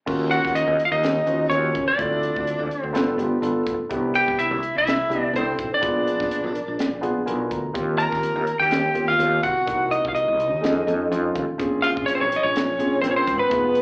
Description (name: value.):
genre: electric jazz fusion.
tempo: 125 BPM.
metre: 4/4.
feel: swing 56% on 16ths.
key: unclear.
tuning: A4 = 440 Hz.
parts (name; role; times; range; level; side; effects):
dark grand piano; accompaniment; 0.1-13.8 s; A3 to Bb5; -25 LUFS; equal; slapback echo.
woody fretless electric bass; bass; 0.1-13.8 s; F1 to F2; -28 LUFS; equal; none.
crisp fusion drum kit; drums; 0.1-13.8 s; crash cymbal, hi-hat, kick drum, snare drum; -31 LUFS; equal; none.
lightly driven lead guitar; melody; 0.3-13.8 s; Cb5 to Bb5; -22 LUFS; equal; none.
warm tenor saxophone; second line; 0.3-13.8 s; Cb4 to Bb4; -27 LUFS; equal; slapback echo.
room: moderate club reverb, RT60 0.5 s.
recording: live gig heard through the venue's PA, club reverb, AM radio sound.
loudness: -19 LUFS.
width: side -38 dB against mid.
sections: 0.1-13.8 A section.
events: grand piano fill 6.3-7.7, 10.9-11.6.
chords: 0.1 Ebm9; 2.0 Dm7; 2.9 G9; 3.9 Cmaj7; 5.8 Bb7b9; 7.7 Eb69; 9.7 Cm7b5; 10.6 F7alt; 11.6 Bbm9.